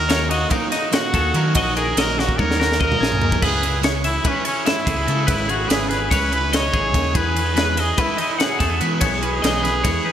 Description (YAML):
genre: math rock and midwest emo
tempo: 289 BPM (eighths)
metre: 9/8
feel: straight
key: unclear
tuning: A4 = 440 Hz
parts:
  - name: bright trumpet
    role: melody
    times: 0.0-10.1 s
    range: C#4 to C#5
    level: -23 LUFS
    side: equal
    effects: none
  - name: twangy electric guitar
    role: accompaniment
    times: 0.0-10.1 s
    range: E2 to G#4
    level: -30 LUFS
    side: right 6 dB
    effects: slapback echo
  - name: twelve-string electric guitar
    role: arpeggios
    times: 0.0-10.1 s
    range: G#4 to F#5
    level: -24 LUFS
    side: left 4 dB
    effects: analog chorus, slapback echo, tape echo
  - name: overdriven fingered electric bass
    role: bass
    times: 0.0-9.9 s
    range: G#1 to E3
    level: -24 LUFS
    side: equal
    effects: none
  - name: crunchy overdriven guitar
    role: riff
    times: 0.1-10.1 s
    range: C#3 to E4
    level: -29 LUFS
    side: right 1 dB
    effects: spring reverb
  - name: crisp fusion drum kit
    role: drums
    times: 0.1-9.9 s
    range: crash cymbal, kick drum, ride cymbal, snare drum, toms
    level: -21 LUFS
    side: right 1 dB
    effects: none
room: moderate lush hall reverb, RT60 1.7 s, studio reverb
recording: big arena sound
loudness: -17 LUFS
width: side -9 dB against mid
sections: 0.0-10.1 A section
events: drum fill 2.2-3.4; break 9.9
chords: 0.0 D#m7; 3.4 C#m7; 7.2 Emaj7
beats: 0.10 0.31 0.52 0.72 0.93 1.14 1.35 | 1.55 1.76 1.97 2.18 2.38 2.59 2.80 3.00 3.21 | 3.42 3.63 3.83 4.04 4.25 4.46 4.67 4.87 5.08 | 5.29 5.49 5.70 5.91 6.12 6.32 6.53 6.74 6.95 | 7.15 7.36 7.57 7.77 7.98 8.19 8.39 8.60 8.81 | 9.02 9.22 9.43 9.64 9.85 10.05